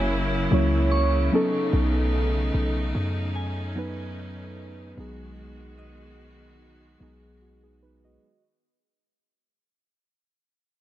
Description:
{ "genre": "R&B", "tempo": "74 BPM", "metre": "4/4", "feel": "swing 54% on 16ths", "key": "unclear", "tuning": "A4 = 440 Hz", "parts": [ { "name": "muted felt-like synth keys", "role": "accompaniment", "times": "0.0-8.4 s", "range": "F#3 to D#5", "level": "-27 LUFS", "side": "right 1 dB", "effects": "chorus" }, { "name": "warm studio string section", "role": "sustained chords", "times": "0.0-8.2 s", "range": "C#3 to F#4", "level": "-32 LUFS", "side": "left 1 dB", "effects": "none" }, { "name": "warm 808-style bass", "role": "bass", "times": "0.0-8.2 s", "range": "F#1 to F#2", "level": "-26 LUFS", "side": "equal", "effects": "none" }, { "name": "soft synth bell", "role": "texture", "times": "0.0-8.5 s", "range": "D#5 to C#6", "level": "-37 LUFS", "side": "left 1 dB", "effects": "chorus, phaser, ping-pong delay" } ], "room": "light reverb", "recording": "none", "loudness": "-22 LUFS", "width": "side -13 dB against mid", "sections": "0.0-8.2 A section", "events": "fade-out 0.0-8.2", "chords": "0.0 F#7; 1.3 B9; 5.0 G#m7/B" }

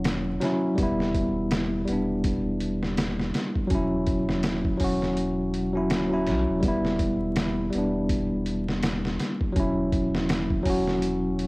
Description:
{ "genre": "trip hop", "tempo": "82 BPM", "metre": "4/4", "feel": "swing 59% on 16ths", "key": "E dorian", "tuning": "A4 = 440 Hz", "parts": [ { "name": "bell-like tine electric piano", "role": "accompaniment", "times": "0.0-11.5 s", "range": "F#3 to F#4", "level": "-25 LUFS", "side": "equal", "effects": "harmonic tremolo, cassette tape, tape echo" }, { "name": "soft dub sub bass", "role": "bass", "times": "0.0-11.5 s", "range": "D1 to B1", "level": "-32 LUFS", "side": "equal", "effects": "none" }, { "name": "trip hop sampler-style drum kit", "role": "drums", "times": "0.0-11.5 s", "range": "hi-hat, kick drum, snare drum", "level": "-28 LUFS", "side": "equal", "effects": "vintage 12-bit sampler grit, cassette tape" } ], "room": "little or no reverb", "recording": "home recording on cassette, vinyl crackle", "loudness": "-23 LUFS", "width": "side -25 dB against mid", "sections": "0.0-11.5 A section", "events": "none", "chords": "0.0 C#madd11/E; 0.8 Em; 3.7 Dmaj7/E; 6.6 Em; 9.6 C#madd11/E" }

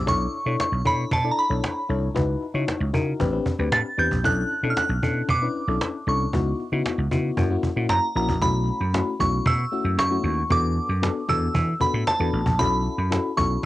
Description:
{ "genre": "early-eighties boogie funk", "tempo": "115 BPM", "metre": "4/4", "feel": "straight", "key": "B minor from 8.4 s", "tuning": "A4 = 440 Hz", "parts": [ { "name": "glassy synth bell", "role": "melody", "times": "0.0-13.6 s", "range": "A5 to A6", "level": "-25 LUFS", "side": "right 1 dB", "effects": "chorus, tremolo, cassette tape" }, { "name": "vintage slap bass", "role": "bass", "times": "0.0-13.6 s", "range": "A1 to E3", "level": "-25 LUFS", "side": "right 1 dB", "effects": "none" }, { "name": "FM electric piano with auto-pan", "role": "accompaniment", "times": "0.1-13.7 s", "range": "A3 to D5", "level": "-28 LUFS", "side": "left 5 dB", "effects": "cassette tape" }, { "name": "cajon", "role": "drums", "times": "0.1-13.6 s", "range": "none", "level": "-26 LUFS", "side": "right 1 dB", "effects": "cassette tape" } ], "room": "light reverb", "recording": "home recording on cassette", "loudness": "-21 LUFS", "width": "side -16 dB against mid", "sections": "0.0-8.4 A section; 8.4-13.7 B section", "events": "none", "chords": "0.1 Bm11; 2.2 C#m11; 3.2 Am11; 4.2 Bm11; 6.3 C#m11; 7.4 F#7; 8.4 B9sus4; 10.5 E9sus4; 12.6 B9sus4" }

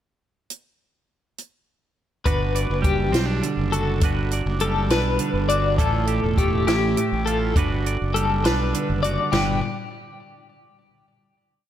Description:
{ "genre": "math rock and midwest emo", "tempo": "68 BPM (dotted quarters)", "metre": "6/8", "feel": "straight", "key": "G major", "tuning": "A4 = 440 Hz", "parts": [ { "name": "compact cocktail drum kit", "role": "drums", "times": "0.5-9.5 s", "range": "hi-hat, kick drum, snare drum, splash cymbal, toms", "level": "-24 LUFS", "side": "equal", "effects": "none" }, { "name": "twelve-string electric guitar", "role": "accompaniment", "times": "2.3-9.6 s", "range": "G2 to D5", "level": "-26 LUFS", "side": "right 5 dB", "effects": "slapback echo" }, { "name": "twelve-string electric guitar", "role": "arpeggios", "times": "2.3-9.6 s", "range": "G4 to D5", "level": "-25 LUFS", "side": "left 5 dB", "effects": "tremolo, tape echo, slapback echo" }, { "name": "fuzz fingered electric bass", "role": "bass", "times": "2.3-9.6 s", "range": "E1 to B1", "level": "-24 LUFS", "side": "equal", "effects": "overdrive" } ], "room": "moderate concert hall reverb, RT60 2.1 s", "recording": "big arena sound", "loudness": "-19 LUFS", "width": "side -11 dB against mid", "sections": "0.5-2.3 pickup bar; 2.3-9.3 A section; 9.3-11.1 final chord", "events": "none", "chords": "0.5 N.C.; 2.3 Gmaj7; 5.8 Fmaj7; 7.6 Gmaj7" }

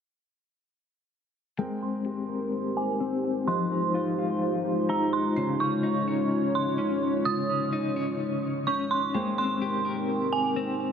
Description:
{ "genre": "hip hop", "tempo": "127 BPM", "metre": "4/4", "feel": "half-time", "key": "unclear", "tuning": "A4 = 442 Hz", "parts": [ { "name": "dark analog pad", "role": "sustained chords", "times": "2.3-10.9 s", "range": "Ab3 to G5", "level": "-28 LUFS", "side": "equal", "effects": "chorus, low-pass filter" }, { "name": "clean electric guitar", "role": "arpeggios", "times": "1.6-10.9 s", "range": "Db3 to F5", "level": "-30 LUFS", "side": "left 5 dB", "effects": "tremolo, low-pass filter, tape echo" }, { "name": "felt-muted upright piano", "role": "texture", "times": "1.6-10.9 s", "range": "Ab3 to C7", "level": "-41 LUFS", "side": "right 2 dB", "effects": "none" }, { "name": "dark detuned synth bell", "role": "melody", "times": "1.8-10.6 s", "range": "Ab5 to Eb6", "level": "-30 LUFS", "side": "right 5 dB", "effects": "chorus, low-pass filter, tape echo" } ], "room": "moderate huge ambient reverb, RT60 8.9 s", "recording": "none", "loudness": "-25 LUFS", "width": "side -7 dB against mid", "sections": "1.6-9.1 A section; 9.1-10.9 B section", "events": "filter sweep 1.6-9.1", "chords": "1.6 Abmaj9; 3.5 Fm9; 5.4 Dbmaj9; 9.1 Abmaj9" }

